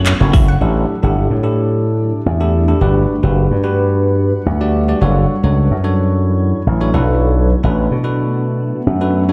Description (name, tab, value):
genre	dance-pop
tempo	109 BPM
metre	4/4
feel	straight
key	unclear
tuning	A4 = 442 Hz
part	bell-like tine electric piano	accompaniment	0.0-9.3 s	C#4 to D5	-23 LUFS	equal	sidechain pumping
part	granular cloud pad	sustained chords	0.0-9.3 s	F#3 to F#5	-27 LUFS	equal	built-in reverb, sidechain pumping
part	twelve-string electric guitar	riff	0.0-0.5 s	E4	-30 LUFS	equal	lush chorus
part	slap bass with an envelope filter	bass	0.0-9.3 s	F#1 to B2	-16 LUFS	equal	sidechain pumping
part	house drum kit	drums	0.1-0.5 s	handclaps, hi-hat, kick drum	-16 LUFS	equal	none
part	mallet-like synth pluck	arpeggios	0.3-0.6 s	E5 to F#5	-35 LUFS	equal	none
room	light reverb, digital ambience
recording	played on a big sound system in a bare room, stone room reverb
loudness	-15 LUFS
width	mono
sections	0.6-9.3 A section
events	none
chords	0.0 F#m7; 0.6 A7sus4; 2.8 Gmaj7; 5.0 Dmaj7/F#; 6.9 Bm7